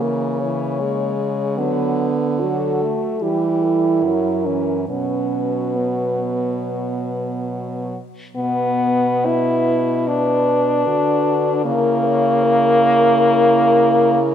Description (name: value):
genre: classical, lyrical piece for horn quartet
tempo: 71 BPM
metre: 4/4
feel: uneven beats, rubato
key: B minor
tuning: A4 = 441 Hz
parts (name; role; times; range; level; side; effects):
- mellow French horn; melody; 0.0-14.3 s; F#4 to C#5; -24 LUFS; left 7 dB; none
- mellow French horn; second line; 0.0-14.3 s; A#3 to B4; -22 LUFS; right 7 dB; none
- warm French horn; accompaniment; 0.0-14.2 s; E3 to E4; -19 LUFS; left 2 dB; none
- warm French horn; bass; 0.0-14.3 s; F#2 to E3; -24 LUFS; right 1 dB; none
room: moderate concert hall reverb, RT60 2.0 s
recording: none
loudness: -16 LUFS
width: side -9 dB against mid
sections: 0.0-8.4 A section; 8.4-14.3 A section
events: none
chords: 0.0 A#dim/C#; 1.6 Bm/D; 3.2 Emadd11; 4.0 F#7; 4.9 B5; 8.4 Bm; 11.7 A#dim/C#